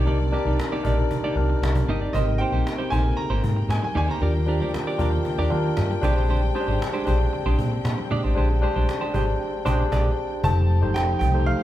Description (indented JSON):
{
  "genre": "polished 1980s jazz-funk pop",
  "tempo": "116 BPM",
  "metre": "4/4",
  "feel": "straight",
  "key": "unclear",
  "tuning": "A4 = 440 Hz",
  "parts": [
    { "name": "tine electric piano", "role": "accompaniment", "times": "0.0-11.6 s", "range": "C4 to C5", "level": "-27 LUFS", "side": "equal", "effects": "medium stereo tremolo" },
    { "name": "rich studio string section", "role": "sustained chords", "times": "0.0-11.6 s", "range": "C3 to G5", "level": "-34 LUFS", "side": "left 2 dB", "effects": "none" },
    { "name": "clean electric guitar", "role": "riff", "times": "0.0-10.1 s", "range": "Ab3 to Eb5", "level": "-30 LUFS", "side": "right 3 dB", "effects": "none" },
    { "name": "woody fretless electric bass", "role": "bass", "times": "0.0-11.5 s", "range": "F1 to Eb3", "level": "-22 LUFS", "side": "equal", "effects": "none" },
    { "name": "cajon", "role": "drums", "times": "0.1-11.6 s", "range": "none", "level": "-32 LUFS", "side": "equal", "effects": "none" },
    { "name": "congas", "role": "percussion", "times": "0.1-11.6 s", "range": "none", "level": "-37 LUFS", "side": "left 3 dB", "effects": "none" },
    { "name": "bright grand piano", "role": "melody", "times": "2.1-4.8, 10.4-11.6 s", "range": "Eb5 to Bb5", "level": "-28 LUFS", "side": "right 3 dB", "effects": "none" }
  ],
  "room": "moderate large studio reverb, RT60 1.1 s",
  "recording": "band playing live in one room",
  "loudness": "-20 LUFS",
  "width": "side -13 dB against mid",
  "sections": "0.0-10.4 A section; 10.4-11.6 B section",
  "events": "band accent 9.4-10.4",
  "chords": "0.0 Cm9; 2.1 Abmaj9; 4.2 Ebmaj7; 6.0 Bb13; 10.4 F9",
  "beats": "| 0.07 0.59 1.11 1.62 | 2.14 2.66 3.18 3.70 | 4.21 4.73 5.25 5.77 | 6.29 6.81 7.33 7.84 | 8.36 8.88 9.40 9.92 | 10.44 10.95 11.47"
}